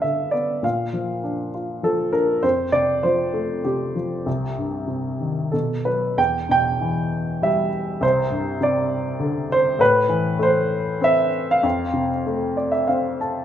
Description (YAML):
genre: classical, lyrical solo piano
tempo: 90-103 BPM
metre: 3/4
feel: rubato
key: E phrygian from 6.2 s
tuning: A4 = 440 Hz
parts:
  - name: warm baby grand piano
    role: solo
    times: 0.0-13.4 s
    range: C2 to A5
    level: -19 LUFS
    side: equal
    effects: none
room: moderate recital hall reverb, RT60 1.3 s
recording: minimal, uncompressed stereo recording, lossy compression artefacts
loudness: -19 LUFS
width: side -10 dB against mid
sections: 0.0-6.2 A section; 6.2-13.4 B section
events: grand piano fill 12.3-13.4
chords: 0.0 G; 0.6 Bb; 2.4 Fadd9; 4.3 Cm; 5.5 B5; 6.2 Em; 8.0 Csus2; 9.8 Amadd9; 11.6 F